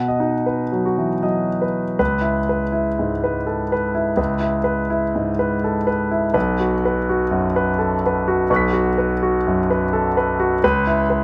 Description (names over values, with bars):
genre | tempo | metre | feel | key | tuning
neoclassical minimalist piano | 83 BPM | 3/4 | rubato | C# minor | A4 = 440 Hz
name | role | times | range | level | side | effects
clear concert grand piano | solo | 0.0-11.2 s | B1 to B6 | -20 LUFS | equal | none
room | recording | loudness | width
light reverb | close, detailed microphones | -20 LUFS | mono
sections
0.0-2.0 A section; 2.0-11.2 B section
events
none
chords
0.0 B; 2.0 C#m7; 6.3 Bsus2; 10.6 C#m7